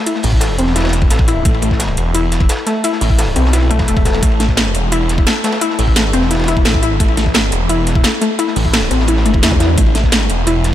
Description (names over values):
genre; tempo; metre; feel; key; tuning
dark technical drum and bass; 173 BPM; 4/4; straight; A minor; A4 = 440 Hz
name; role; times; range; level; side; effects
warbly dusty pluck; arpeggios; 0.1-10.6 s; A3 to A4; -18 LUFS; left 3 dB; chorus, sidechain pumping, ping-pong delay
crunchy breakbeat drum kit; drums; 0.1-10.7 s; hi-hat, ride cymbal, snare drum; -24 LUFS; equal; high-pass filter on cymbals, high-pass filter on hats, high-pass filter on snare, high-pass filter on room
drum and bass drum kit; drums; 0.1-10.7 s; hi-hat, snare drum; -18 LUFS; right 1 dB; none
snarling distorted saw bass; bass; 0.2-10.7 s; E1 to E2; -15 LUFS; equal; distortion, overdrive, sidechain pumping
electronic kick drum; drums; 0.3-10.1 s; none; -15 LUFS; equal; none
zap; sound effects; 9.5-9.6 s; none; -24 LUFS; equal; none
room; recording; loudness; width
light reverb; none; -12 LUFS; side -12 dB against mid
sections
0.0-10.7 A section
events
none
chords
0.0 A5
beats
| 0.07 0.41 0.76 1.10 | 1.45 1.80 2.15 2.49 | 2.84 3.19 3.53 3.88 | 4.23 4.57 4.92 5.27 | 5.61 5.96 6.31 6.65 | 7.00 7.35 7.70 8.04 | 8.39 8.73 9.08 9.43 | 9.78 10.12 10.47